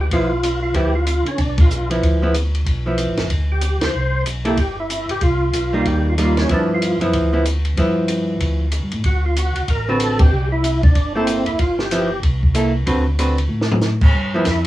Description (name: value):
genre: soul jazz organ trio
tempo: 188 BPM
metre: 4/4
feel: swing 61% on 8ths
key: G mixolydian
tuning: A4 = 438 Hz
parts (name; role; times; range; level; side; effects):
- percussive tonewheel organ; melody; 0.0-7.0, 9.1-12.2, 14.5-14.7 s; C4 to C5; -22 LUFS; equal; slow rotary speaker, overdrive, chorus vibrato, cassette tape
- mellow tonewheel organ; bass; 0.0-14.7 s; F#1 to D3; -20 LUFS; equal; chorus vibrato, slow rotary speaker
- archtop guitar, miked and amplified; accompaniment; 0.1-14.5 s; D3 to B4; -19 LUFS; right 1 dB; cassette tape
- compact cocktail drum kit; drums; 0.1-14.7 s; crash cymbal, hi-hat, kick drum, ride cymbal, snare drum, toms; -20 LUFS; equal; cassette tape
room: light reverb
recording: home recording on cassette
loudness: -16 LUFS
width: side -15 dB against mid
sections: 0.0-14.1 A section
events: band accent 1.6, 3.8, 10.2; drum fill 13.5-13.8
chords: 0.0 G13; 3.9 C; 5.2 Cm7; 6.5 G13; 9.0 D6; 10.3 C13; 11.6 G6; 12.2 C6; 12.9 D6; 14.1 G13